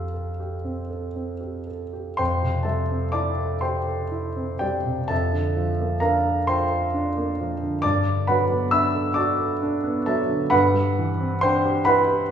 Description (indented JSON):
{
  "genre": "classical, impressionist solo piano",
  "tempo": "37-46 BPM (dotted quarters)",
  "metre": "6/8",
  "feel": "rubato",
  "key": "F major",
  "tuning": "A4 = 440 Hz",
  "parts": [
    { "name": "warm grand piano", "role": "solo", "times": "0.0-12.3 s", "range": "F2 to F6", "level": "-21 LUFS", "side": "equal", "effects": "none" }
  ],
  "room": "wet recital hall reverb, RT60 1.4 s",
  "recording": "heard from further back in the room, small room ambience",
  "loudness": "-21 LUFS",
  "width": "side -8 dB against mid",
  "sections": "0.0-2.2 A section; 2.2-12.3 B section",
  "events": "none",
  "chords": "0.0 Fadd9; 2.2 Fmaj9; 5.1 Bbmaj9/F; 7.8 Gmaj9; 10.5 Cmaj9/G"
}